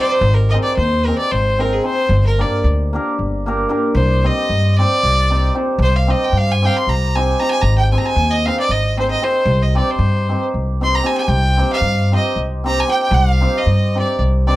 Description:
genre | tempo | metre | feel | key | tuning
balkan folk, Balkan wedding band | 229 BPM (eighths) | 7/8 | straight | C minor | A4 = 438 Hz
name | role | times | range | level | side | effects
bright fiddle | melody | 0.0-14.6 s | Ab4 to C6 | -19 LUFS | equal | none
cimbalom | accompaniment | 0.0-14.6 s | Bb3 to C5 | -21 LUFS | equal | none
upright bass | bass | 0.2-14.6 s | G1 to G2 | -16 LUFS | equal | none
room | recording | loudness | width
light reverb | dry, close 1970s-style studio recording | -14 LUFS | side -16 dB against mid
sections
0.0-14.6 A section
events
fiddle solo 0.0-14.6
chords
0.2 Ab; 2.1 Gm; 3.9 Cm; 7.6 Ab; 9.5 Cm

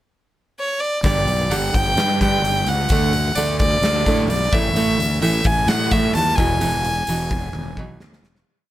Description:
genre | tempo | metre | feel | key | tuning
quiet-loud alternative rock | 129 BPM | 4/4 | straight | unclear | A4 = 443 Hz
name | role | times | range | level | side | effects
clear fiddle | melody | 0.6-8.0 s | C#5 to A5 | -21 LUFS | equal | none
picked steel-string acoustic guitar | arpeggios | 1.0-8.4 s | E2 to D4 | -24 LUFS | right 2 dB | none
fuzz fingered electric bass | bass | 1.0-8.4 s | E1 to A2 | -22 LUFS | equal | overdrive
huge arena drum kit | drums | 1.0-8.5 s | hi-hat, kick drum, snare drum, toms | -22 LUFS | equal | none
room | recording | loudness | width
light reverb | none | -16 LUFS | side -14 dB against mid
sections
0.0-1.0 pickup bar; 1.0-8.5 verse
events
fade-out 6.6-8.5; drum fill 7.5-8.5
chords
0.0 N.C.; 1.0 G5; 2.9 D; 4.5 A5; 6.4 E

